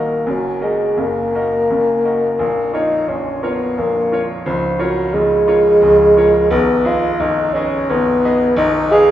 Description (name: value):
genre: classical, romantic duo for bassoon and grand piano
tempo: 87 BPM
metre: 3/4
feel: rubato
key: unclear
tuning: A4 = 440 Hz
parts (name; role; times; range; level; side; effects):
- dark bassoon; melody; 0.0-9.1 s; F3 to Ab4; -14 LUFS; equal; none
- bright grand piano; accompaniment; 0.0-9.1 s; Bb0 to F5; -20 LUFS; right 1 dB; none
room: wet stone room reverb, RT60 1.2 s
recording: heard from further back in the room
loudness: -13 LUFS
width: side -12 dB against mid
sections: 0.0-9.1 A section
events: none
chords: 0.3 Ebm/Gb; 2.4 Bbm; 4.5 Bbm/Db; 6.5 Abm/Cb; 8.6 Fdim/Cb